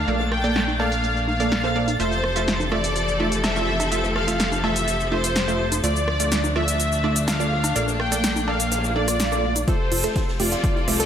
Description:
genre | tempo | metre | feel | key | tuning
progressive house | 125 BPM | 4/4 | straight | F major | A4 = 437 Hz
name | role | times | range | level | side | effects
soft supersaw | melody | 0.0-11.0 s | F4 to G5 | -25 LUFS | left 1 dB | sidechain pumping, digital delay
clear studio string section | sustained chords | 0.0-11.1 s | E3 to A4 | -29 LUFS | left 2 dB | sidechain pumping
fat analog bass | bass | 0.0-11.0 s | F1 to D2 | -27 LUFS | equal | sidechain pumping
twinkling granular texture | texture | 0.0-9.7 s | A6 | -35 LUFS | right 1 dB | built-in reverb, sidechain pumping
wide unison pluck | stabs | 0.1-11.0 s | A3 to E5 | -27 LUFS | right 3 dB | sidechain pumping, digital delay
big-room dance drum kit | drums | 0.1-11.1 s | hi-hat, rim click, shaker, snare drum | -26 LUFS | equal | overdrive, low-pass filter on hats, low-pass filter on cymbals, low-pass filter on perc, low-pass filter on snare, low-pass filter on room
vintage drum kit | drums | 0.1-11.0 s | hi-hat, snare drum | -40 LUFS | right 1 dB | none
electronic rim click, congas and cowbell | percussion | 0.3-9.7 s | none | -32 LUFS | equal | overdrive, sidechain pumping on snare, sidechain pumping on perc
swell and riser | sound effects | 8.9-11.1 s | none | -33 LUFS | right 2 dB | none
analog pluck | arpeggios | 9.7-11.1 s | E4 to C5 | -28 LUFS | right 2 dB | chorus, sidechain pumping, digital delay
electronic kick drum | drums | 9.7-10.7 s | none | -23 LUFS | equal | overdrive
room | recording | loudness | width
light reverb, digital ambience | none | -19 LUFS | side -9 dB against mid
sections
0.0-9.7 A section; 9.7-11.1 B section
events
swell 8.9-9.7; build-up 9.7-11.1; filter sweep on synth arpeggio sound 9.7-11.1; filter sweep on synth pluck 9.7-11.1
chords
0.1 Bbmaj7; 2.0 Fmaj7; 5.8 Dm; 7.8 Bbmaj7; 9.7 Fmaj7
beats
| 0.08 0.56 1.04 1.52 | 2.00 2.48 2.96 3.44 | 3.92 4.40 4.88 5.36 | 5.84 6.32 6.80 7.28 | 7.76 8.24 8.72 9.20 | 9.68 10.16 10.64

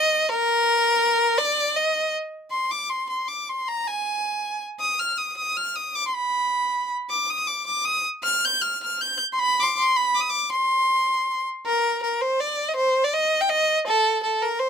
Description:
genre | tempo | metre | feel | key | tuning
musette | 158 BPM | 3/4 | straight | C minor, Eb major from 11.7 s | A4 = 440 Hz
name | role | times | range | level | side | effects
clear violin | solo | 0.0-14.7 s | A4 to G6 | -20 LUFS | equal | none
room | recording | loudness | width
light reverb | none | -21 LUFS | side -7 dB against mid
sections
0.0-2.5 A section; 2.5-11.7 B section; 11.7-14.7 A section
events
none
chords
none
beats
| 0.28 0.65 1.01 | 1.38 1.75 2.13 | 2.51 2.90 3.28 | 3.66 4.04 4.42 | 4.80 5.18 5.55 | 5.93 6.32 6.70 | 7.09 7.47 7.86 | 8.24 8.62 9.00 | 9.38 9.76 10.13 | 10.51 10.89 11.27 | 11.66 12.04 12.41 | 12.78 13.15 13.52 | 13.89 14.25 14.62

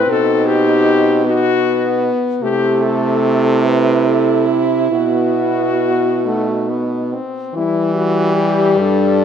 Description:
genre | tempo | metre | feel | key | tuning
classical, lyrical piece for horn quartet | 45-52 BPM (dotted quarters) | 6/8 | rubato | E minor | A4 = 440 Hz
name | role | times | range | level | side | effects
mellow French horn | melody | 0.0-9.2 s | E4 to B4 | -18 LUFS | left 6 dB | none
mellow French horn | second line | 0.0-9.2 s | D4 to E4 | -18 LUFS | right 8 dB | none
warm French horn | accompaniment | 0.0-9.2 s | G3 to C4 | -19 LUFS | left 2 dB | none
clear French horn | bass | 0.0-9.2 s | G2 to E3 | -19 LUFS | right 2 dB | none
room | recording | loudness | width
moderate concert hall reverb, RT60 1.7 s | none | -13 LUFS | side -8 dB against mid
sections
0.0-7.6 A section; 7.6-9.2 B section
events
none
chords
0.1 B; 2.4 Am/C; 4.9 B; 7.6 Em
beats
| 0.09 1.26 | 2.42 3.64 | 4.93 6.25 | 7.56 8.78

